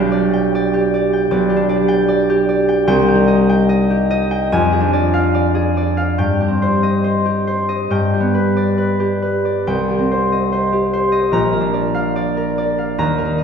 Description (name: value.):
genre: classical, solo harp piece.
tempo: 71 BPM.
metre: 4/4.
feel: uneven beats, rubato.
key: C minor.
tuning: A4 = 440 Hz.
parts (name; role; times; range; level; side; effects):
concert harp; solo; 0.0-13.4 s; Bb1 to Bb5; -14 LUFS; equal; none.
room: wet scoring stage reverb, RT60 1.9 s.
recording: heard from further back in the room.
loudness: -14 LUFS.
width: side -6 dB against mid.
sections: 0.0-13.4 A section.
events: none.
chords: 0.0 G/B; 2.9 Cm; 4.5 Ddim/F; 6.2 Cm/G; 7.9 G; 9.7 Cm; 11.3 Bb.